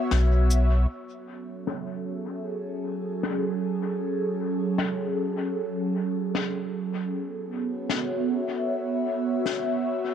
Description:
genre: ambient dub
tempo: 77 BPM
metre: 4/4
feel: swing 56% on 16ths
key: F# minor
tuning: A4 = 440 Hz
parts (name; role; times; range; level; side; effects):
- airy breathy pad; sustained chords; 0.0-10.1 s; F#3 to E5; -27 LUFS; right 1 dB; chorus, phaser
- soft dub sub bass; bass; 0.1-0.9 s; B1; -19 LUFS; equal; none
- snare drum and cabasa; drums; 0.1-9.6 s; none; -33 LUFS; left 6 dB; low-pass filter on snare, low-pass filter on perc, low-pass filter on room, dub echo
room: light reverb, small room ambience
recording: none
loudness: -25 LUFS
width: side -9 dB against mid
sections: 0.9-10.1 A section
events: filter sweep on drum 0.9-10.1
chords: 0.0 F#7(no3); 0.9 F#m7; 7.1 B9sus4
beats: 0.11 | 0.89 1.67 2.45 3.23 | 4.01 4.79 5.57 6.35 | 7.13 7.91 8.69 9.46

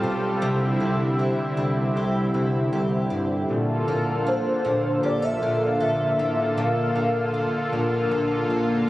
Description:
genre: dream pop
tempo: 78 BPM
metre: 4/4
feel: straight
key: unclear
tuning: A4 = 440 Hz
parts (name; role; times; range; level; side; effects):
- lush unison pad; sustained chords; 0.0-8.9 s; D3 to A4; -24 LUFS; equal; chorus
- picked twelve-string acoustic guitar; arpeggios; 0.0-8.9 s; Bb2 to A4; -28 LUFS; left 2 dB; analog chorus, digital delay
- fat analog bass; bass; 0.0-8.8 s; G1 to C2; -28 LUFS; equal; none
- warm velvety synth lead; melody; 4.3-8.1 s; C5 to F5; -26 LUFS; equal; chorus, digital delay
room: moderate huge ambient reverb, RT60 6.4 s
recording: recorded on a phone in the room, club reverb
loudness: -21 LUFS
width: side -16 dB against mid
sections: 0.0-8.9 A section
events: none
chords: 0.4 Cadd9; 3.5 Bbmaj7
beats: | 0.42 1.19 1.96 2.73 | 3.50 4.27 5.04 5.80 | 6.58 7.34 8.11 8.88

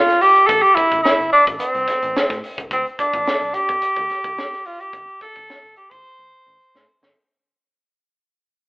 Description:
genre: funk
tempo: 108 BPM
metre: 4/4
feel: straight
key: unclear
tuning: A4 = 436 Hz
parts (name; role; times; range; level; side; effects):
- breathy tenor saxophone; melody; 0.0-6.9 s; C4 to C5; -16 LUFS; equal; none
- tight funk drum kit; drums; 0.1-7.1 s; hi-hat, kick drum, snare drum; -24 LUFS; equal; none
- egg shaker; percussion; 0.1-7.1 s; none; -54 LUFS; equal; none
- vintage muted fingered electric bass; bass; 0.5-7.1 s; G1 to A2; -39 LUFS; equal; none
room: moderate stone room reverb, RT60 1.4 s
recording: band playing live in one room, telephone sound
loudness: -15 LUFS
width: side -26 dB against mid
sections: 0.0-7.2 A section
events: fade-out 0.0-7.2; drum fill 6.0-7.2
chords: 0.5 Am; 2.7 Dm7; 4.9 Am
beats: | 0.49 1.04 1.60 2.15 | 2.71 3.26 3.82 4.38 | 4.93 5.49 6.04 6.60

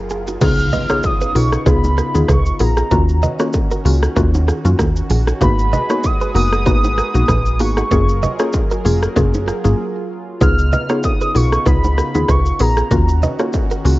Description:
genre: afrobeats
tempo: 96 BPM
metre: 4/4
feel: swing 55% on 16ths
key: unclear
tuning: A4 = 440 Hz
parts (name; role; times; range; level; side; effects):
- warm analog pad; sustained chords; 0.0-14.0 s; C#3 to B4; -26 LUFS; equal; chorus
- plucky analog bass; bass; 0.0-14.0 s; E#1 to F#2; -16 LUFS; equal; none
- noise sweep and impact; sound effects; 0.0-2.9 s; none; -29 LUFS; equal; none
- direct-recorded clean electric guitar; riff; 0.1-14.0 s; D#4 to D#5; -25 LUFS; right 4 dB; spring reverb
- industrial drum kit; drums; 0.1-14.0 s; crash cymbal, hi-hat, kick drum, rim click, shaker; -20 LUFS; equal; distortion
- warm velvety synth lead; melody; 0.4-13.2 s; A#5 to E#6; -22 LUFS; equal; chorus
- mallet-like synth pluck; accompaniment; 0.4-14.0 s; A#3 to G#4; -21 LUFS; left 3 dB; chorus
- congas and bongos; percussion; 0.4-13.7 s; none; -24 LUFS; right 2 dB; none
room: little or no reverb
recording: worn, warbling old tape, cassette tape, warbly pitch drift, nothing above 7.6 kHz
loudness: -13 LUFS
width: side -18 dB against mid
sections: 0.4-14.0 A section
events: noise sweep 0.0-0.4; impact 0.4-2.9; break 9.8-10.4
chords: 0.4 C#9; 5.4 G#m9; 7.9 F#maj9; 10.4 C#9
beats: | 0.41 1.04 1.67 2.29 | 2.92 3.54 4.17 4.79 | 5.42 6.04 6.67 7.29 | 7.92 8.54 9.16 9.79 | 10.41 11.04 11.66 12.29 | 12.91 13.54

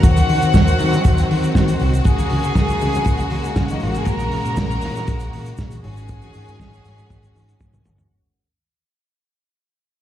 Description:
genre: disco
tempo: 119 BPM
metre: 4/4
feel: straight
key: Eb dorian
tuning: A4 = 442 Hz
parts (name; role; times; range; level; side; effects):
- warm studio violin section; second line; 0.0-7.8 s; Eb4 to Bb5; -24 LUFS; left 1 dB; plate reverb, slapback echo
- rich studio string section; sustained chords; 0.0-8.1 s; Db3 to Gb4; -24 LUFS; equal; plate reverb
- fingered electric bass with an envelope filter; bass; 0.0-8.0 s; G1 to Eb3; -20 LUFS; equal; none
- warm soul drum kit; drums; 0.0-8.1 s; hi-hat, kick drum, snare drum, toms; -18 LUFS; equal; none
- tube shaker; percussion; 0.0-8.1 s; none; -43 LUFS; right 3 dB; none
- congas; percussion; 0.2-8.0 s; none; -28 LUFS; left 7 dB; slapback echo
room: little or no reverb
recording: live gig heard through the venue's PA, club reverb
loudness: -15 LUFS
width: side -12 dB against mid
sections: 0.0-8.1 A section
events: fade-out 0.0-8.1; drum fill 7.6-8.1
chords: 0.0 Ebm6; 2.1 Db5; 4.1 Bbm7; 5.8 Ab7sus4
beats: | 0.04 0.54 1.04 1.55 | 2.05 2.56 3.06 3.57 | 4.07 4.58 5.08 5.59 | 6.09 6.60 7.10 7.61

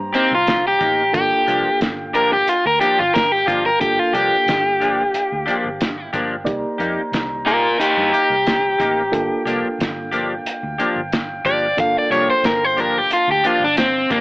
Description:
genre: straight-eighth soul blues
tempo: 90 BPM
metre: 4/4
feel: swing 54% on 16ths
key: G minor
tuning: A4 = 443 Hz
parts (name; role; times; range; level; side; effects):
- reed electric piano; accompaniment; 0.0-14.2 s; Bb3 to D5; -27 LUFS; right 1 dB; fast tremolo
- mellow horn section; sustained chords; 0.0-14.2 s; Eb4 to Bb5; -29 LUFS; right 1 dB; none
- vintage muted fingered electric bass; bass; 0.0-14.2 s; G1 to G2; -35 LUFS; equal; none
- crunchy overdriven guitar; melody; 0.1-14.2 s; Bb3 to F5; -16 LUFS; equal; none
- semi-hollow electric guitar; stabs; 0.1-14.2 s; F3 to G4; -23 LUFS; left 1 dB; analog chorus
- cloth-damped thuddy drum kit; drums; 0.1-14.2 s; hi-hat, kick drum, snare drum; -24 LUFS; equal; none
room: light reverb, small room ambience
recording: AM radio sound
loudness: -15 LUFS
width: side -25 dB against mid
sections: 0.0-14.2 A section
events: overdriven electric guitar solo 0.0-14.2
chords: 0.0 Cm7; 1.1 Gm7; 6.5 Cm7; 9.1 Gm7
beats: 0.47 | 1.14 1.81 2.47 3.14 | 3.81 4.47 5.14 5.80 | 6.47 7.13 7.80 8.46 | 9.13 9.79 10.45 11.12 | 11.78 12.44 13.11 13.77

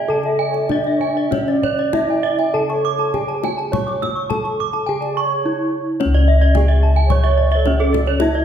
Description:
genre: Balinese gamelan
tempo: 97-109 BPM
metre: 4/4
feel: straight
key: C# pelog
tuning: A4 = 440 Hz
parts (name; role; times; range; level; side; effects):
- gamelan-type bronze metallophone; melody; 0.0-8.4 s; C#4 to C#5; -21 LUFS; equal; none
- mellow bansuri; second line; 0.0-8.4 s; G#4-25c to E5-29c; -26 LUFS; right 8 dB; none
- gamelan-type bronze metallophone; arpeggios; 0.0-8.3 s; C#5 to D6+20c; -24 LUFS; left 2 dB; none
- gamelan-type bossed gongs; bass; 0.0-8.4 s; C#2 to C#5; -19 LUFS; left 1 dB; none
- kendang; percussion; 0.2-8.4 s; none; -27 LUFS; left 5 dB; none
- gamelan-type bronze metallophone; arpeggios; 0.4-8.4 s; A4-20c to E6-30c; -23 LUFS; right 5 dB; none
room: wet recital hall reverb, RT60 1.7 s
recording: recorded in a church or concert hall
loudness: -15 LUFS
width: side -9 dB against mid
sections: 0.0-6.0 A section; 6.0-8.4 B section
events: none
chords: none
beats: 0.09 0.71 | 1.33 1.95 2.55 3.15 | 3.73 4.31 4.88 5.45 | 6.00 6.56 7.11 7.66 | 8.21

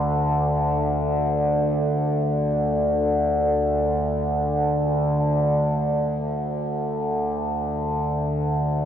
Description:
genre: ambient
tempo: free time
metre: none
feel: none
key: unclear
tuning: A4 = 442 Hz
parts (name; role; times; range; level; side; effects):
- overtone-sweeping drone; solo; 0.0-8.9 s; D2 to D3; -20 LUFS; equal; chorus, built-in reverb, dub echo
room: wet plate reverb, RT60 3.1 s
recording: echo-heavy mix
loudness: -20 LUFS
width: side -9 dB against mid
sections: 0.0-5.2 A section; 5.2-8.9 B section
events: none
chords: none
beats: free time

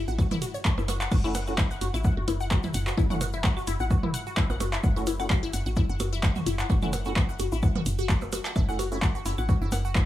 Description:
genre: minimal techno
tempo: 129 BPM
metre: 4/4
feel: swing 55% on 16ths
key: F# minor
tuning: A4 = 440 Hz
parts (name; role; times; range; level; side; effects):
- woody FM bass; bass; 0.0-10.1 s; F#1 to A1; -30 LUFS; equal; sidechain pumping
- resonant blip pluck; riff; 0.1-10.0 s; E4 to F#5; -33 LUFS; left 3 dB; phaser, sidechain pumping, tape echo
- tube shaker; percussion; 0.1-10.1 s; none; -44 LUFS; left 5 dB; none
- electronic kick drum; drums; 0.2-10.1 s; none; -24 LUFS; equal; none
- electronic claves, toms and percussion blips; percussion; 0.2-9.8 s; none; -34 LUFS; right 2 dB; overdrive, tape echo
- punchy analog drum machine; drums; 0.4-10.1 s; crash cymbal, handclaps, hi-hat; -33 LUFS; equal; none
- percussive organ stab; stabs; 1.2-9.0 s; A3 to F#4; -36 LUFS; equal; ensemble chorus, tape echo
room: little or no reverb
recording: small room ambience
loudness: -24 LUFS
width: side -14 dB against mid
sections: 0.0-10.1 A section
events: none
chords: 0.0 F#m7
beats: 0.19 0.65 | 1.12 1.58 2.05 2.51 | 2.98 3.44 3.91 4.37 | 4.84 5.30 5.77 6.23 | 6.70 7.16 7.63 8.09 | 8.56 9.02 9.49 9.95

